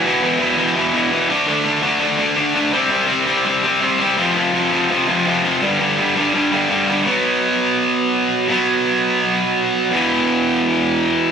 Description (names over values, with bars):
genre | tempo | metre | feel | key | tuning
punk | 167 BPM | 4/4 | straight | unclear | A4 = 441 Hz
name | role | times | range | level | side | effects
distorted electric guitar | solo | 0.0-11.3 s | E2 to D4 | -15 LUFS | equal | overdrive
room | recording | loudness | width
light reverb | band playing live in one room | -15 LUFS | side -7 dB against mid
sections
0.0-1.3 A section; 1.3-7.1 B section; 7.1-11.3 C section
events
none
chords
0.0 E5; 1.3 D5; 2.7 C5; 4.2 F5; 5.6 G5; 7.1 B5; 9.9 E5